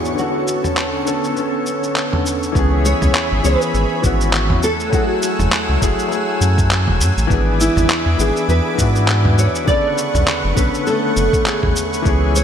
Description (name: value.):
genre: sunset chillout.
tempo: 101 BPM.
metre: 4/4.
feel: swing 57% on 16ths.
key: unclear.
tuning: A4 = 439 Hz.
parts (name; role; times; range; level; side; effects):
warm concert grand piano; accompaniment; 0.0-12.4 s; G#2 to A4; -21 LUFS; left 2 dB; auto-pan, digital delay.
lush unison pad; sustained chords; 0.0-12.4 s; G#2 to E6; -24 LUFS; equal; chorus.
twinkling granular texture; texture; 0.0-2.6 s; C#5 to C#6; -31 LUFS; right 1 dB; built-in reverb.
dusty soul sampler-style drum kit; drums; 0.1-12.4 s; handclaps, shaker, toms; -22 LUFS; equal; none.
nylon-string guitar; melody; 0.2-12.4 s; E4 to D5; -21 LUFS; right 1 dB; ensemble chorus, digital delay.
round analog bass; bass; 2.6-12.4 s; E1 to G#2; -17 LUFS; equal; none.
electronic kick drum; drums; 2.6-12.2 s; none; -20 LUFS; equal; none.
room: moderate lush hall reverb, RT60 2.7 s.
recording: bright 1980s-style digital production.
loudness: -14 LUFS.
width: side -8 dB against mid.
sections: 0.0-2.6 A section; 2.6-12.4 B section.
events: none.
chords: 0.2 Bm9; 2.6 C#m7; 4.6 F#m9; 7.3 E7/G#; 9.7 Bm9.